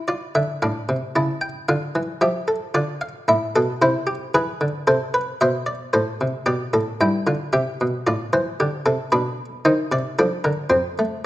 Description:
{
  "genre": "classical, baroque-style 3-part fugue for harpsichord",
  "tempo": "113 BPM",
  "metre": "3/4",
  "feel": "straight",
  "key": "D minor",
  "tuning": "A4 = 440 Hz",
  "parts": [
    { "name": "buff-stop harpsichord", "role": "solo", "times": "0.0-11.3 s", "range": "F2 to A5", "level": "-19 LUFS", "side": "equal", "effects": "none" }
  ],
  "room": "moderate recital hall reverb, RT60 1.7 s",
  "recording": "close, detailed microphones",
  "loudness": "-19 LUFS",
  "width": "side -16 dB against mid",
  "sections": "0.1-6.5 A section; 6.5-11.3 B section",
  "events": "none",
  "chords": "0.1 Dm; 1.2 A7/C#; 1.7 Dm; 3.3 Am; 4.3 E7; 4.9 Am/C; 5.9 Am; 6.5 G; 7.5 Cmaj7; 8.1 F/A; 9.1 Bm; 9.7 Cm/Eb; 10.2 Bb/F; 10.7 F"
}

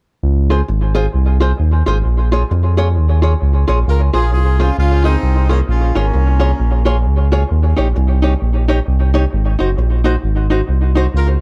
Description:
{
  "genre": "ska",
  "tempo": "132 BPM",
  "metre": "4/4",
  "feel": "swing 60% on 8ths",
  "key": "Db major",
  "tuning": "A4 = 441 Hz",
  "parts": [
    { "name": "smooth synth bass", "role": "bass", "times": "0.2-11.4 s", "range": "Gb1 to F2", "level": "-15 LUFS", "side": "equal", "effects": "none" },
    { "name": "archtop guitar, miked and amplified", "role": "accompaniment", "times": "0.5-11.1 s", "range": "Eb4 to Db5", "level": "-22 LUFS", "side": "equal", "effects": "dub echo" },
    { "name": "warm horn section", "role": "melody", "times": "3.9-6.9, 11.2-11.3 s", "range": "Bb3 to Bb4", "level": "-24 LUFS", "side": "equal", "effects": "dub echo" }
  ],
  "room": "light reverb",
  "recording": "dark, warm production",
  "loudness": "-15 LUFS",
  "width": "mono",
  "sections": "0.2-3.9 A section; 3.9-11.4 B section",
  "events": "none",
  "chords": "0.2 Dbmaj7; 2.1 Bbm7; 3.9 Dbmaj7; 5.7 Bbm7; 7.5 Eb7; 9.3 Ab7"
}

